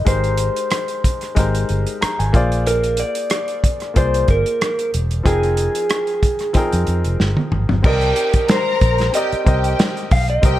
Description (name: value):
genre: lush 1970s-style soul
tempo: 93 BPM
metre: 4/4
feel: swing 54% on 16ths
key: unclear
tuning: A4 = 438 Hz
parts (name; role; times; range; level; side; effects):
- electric guitar through a small old amp; melody; 0.0-10.6 s; Ab4 to F5; -20 LUFS; equal; slapback echo
- clear grand piano; accompaniment; 0.0-10.6 s; F3 to Bb5; -24 LUFS; left 3 dB; none
- vintage muted fingered electric bass; bass; 0.1-10.6 s; Fb1 to F2; -19 LUFS; equal; none
- warm soul drum kit; drums; 0.1-10.6 s; crash cymbal, hi-hat, kick drum, rim click, snare drum, toms; -19 LUFS; equal; none
- warm studio string section; second line; 7.8-10.6 s; G4 to Bb5; -24 LUFS; equal; none
room: studio reverb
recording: none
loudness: -15 LUFS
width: side -14 dB against mid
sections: 0.0-7.8 A section; 7.8-10.6 B section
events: grand piano fill 1.7-2.7; drum fill 7.2-7.8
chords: 0.1 Abmaj7; 2.3 Bb9; 5.3 Fm11; 7.8 Cm7